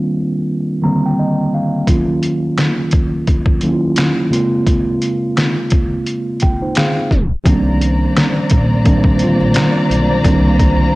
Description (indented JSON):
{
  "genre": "lo-fi hip hop",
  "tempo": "86 BPM",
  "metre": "4/4",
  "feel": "swing 57% on 16ths",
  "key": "C minor",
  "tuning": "A4 = 435 Hz",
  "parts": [
    { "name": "mellow tine electric piano", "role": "accompaniment", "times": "0.0-11.0 s", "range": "Db3 to Bb5", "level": "-15 LUFS", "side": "right 1 dB", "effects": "medium stereo tremolo, low-pass filter, cassette tape" },
    { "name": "trip hop sampler-style drum kit", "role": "drums", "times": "1.9-10.8 s", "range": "finger snaps, hi-hat, kick drum, snare drum", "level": "-15 LUFS", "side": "equal", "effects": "overdrive, cassette tape" },
    { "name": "warm symphonic string section", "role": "sustained chords", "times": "7.5-11.0 s", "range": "Bb3 to Bb5", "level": "-20 LUFS", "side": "left 2 dB", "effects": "low-pass filter, cassette tape" },
    { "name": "upright bass", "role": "bass", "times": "7.5-10.8 s", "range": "Bb1 to C2", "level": "-17 LUFS", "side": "equal", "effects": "none" }
  ],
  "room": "light reverb",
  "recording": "home recording on cassette, tape stop",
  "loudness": "-12 LUFS",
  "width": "side -20 dB against mid",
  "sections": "0.0-7.5 A section; 7.5-11.0 B section",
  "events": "tape stop 7.1-7.5",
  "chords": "0.0 Cm9; 1.9 Ebm9; 4.3 Bbm9; 7.5 Cm9"
}